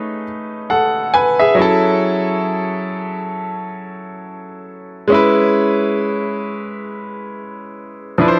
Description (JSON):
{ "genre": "R&B", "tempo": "68 BPM", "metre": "4/4", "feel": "swing 58% on 16ths", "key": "unclear", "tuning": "A4 = 440 Hz", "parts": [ { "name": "clear grand piano", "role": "solo", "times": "0.0-8.4 s", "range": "F3 to G#5", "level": "-18 LUFS", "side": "equal", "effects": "digital delay" } ], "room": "moderate lush hall reverb, RT60 2.9 s", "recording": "none", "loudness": "-17 LUFS", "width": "mono", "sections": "0.0-8.4 A section", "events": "none", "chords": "0.0 Amaj9#11; 1.6 F#m7; 5.1 E6", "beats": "0.26 1.14 | 2.02 2.90 3.78 4.67 | 5.55 6.43 7.31 8.20" }